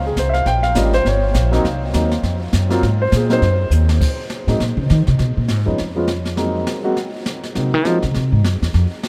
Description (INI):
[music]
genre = jazz piano trio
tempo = 203 BPM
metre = 4/4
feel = swing 60% on 8ths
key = Ab mixolydian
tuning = A4 = 441 Hz
[part]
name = warm concert grand piano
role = melody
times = 0.0-8.0 s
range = F3 to G5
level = -23 LUFS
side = equal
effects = none
[part]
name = upright bass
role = bass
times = 0.0-8.8 s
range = G1 to F3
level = -19 LUFS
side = equal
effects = none
[part]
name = jazz brush drum kit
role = drums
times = 0.2-9.1 s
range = brushed snare drum, crash cymbal, hi-hat, kick drum, snare drum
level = -28 LUFS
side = equal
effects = none
[sound]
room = moderate huge ambient reverb, RT60 8.0 s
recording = in a vast, echoing space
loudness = -18 LUFS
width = mono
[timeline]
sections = 0.0-4.0 A section; 4.0-9.1 A section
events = grand piano solo 0.0-4.0; drum fill 3.7; upright bass solo 4.0-9.1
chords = 0.5 Eb9; 1.6 Ab9; 4.0 Abadd9 (rootless); 5.2 Db7 (rootless); 6.4 Ab9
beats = 0.17 | 0.46 0.76 1.05 1.35 | 1.65 1.94 2.24 2.53 | 2.83 3.12 3.42 3.71 | 4.01 4.31 4.60 4.90 | 5.19 5.49 5.79 6.08 | 6.38 6.67 6.97 7.26 | 7.56 7.85 8.15 8.45 | 8.74 9.04